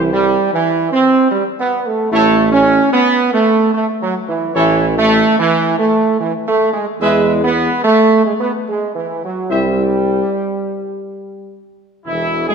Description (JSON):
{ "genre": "classical", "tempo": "73 BPM", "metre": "3/4", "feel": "straight", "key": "unclear", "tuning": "A4 = 440 Hz", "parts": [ { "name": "warm trombone section", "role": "sustained chords", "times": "0.0-12.5 s", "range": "B2 to C#4", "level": "-13 LUFS", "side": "right 2 dB", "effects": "none" }, { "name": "clear tuba", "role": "bass", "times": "0.0-12.5 s", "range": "E1 to E2", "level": "-20 LUFS", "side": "right 2 dB", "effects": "none" }, { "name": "mellow trumpet section", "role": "melody", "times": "2.1-12.5 s", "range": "E4 to E5", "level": "-21 LUFS", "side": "equal", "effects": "none" }, { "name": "warm French horn section", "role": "sustained chords", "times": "2.1-12.5 s", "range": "E3 to E4", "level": "-24 LUFS", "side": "left 6 dB", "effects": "none" } ], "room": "moderate concert hall reverb, RT60 1.8 s", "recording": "none", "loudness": "-12 LUFS", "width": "side -6 dB against mid", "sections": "0.0-12.1 A section", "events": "none", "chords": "0.0 C; 2.1 A5; 7.0 E5; 9.5 C" }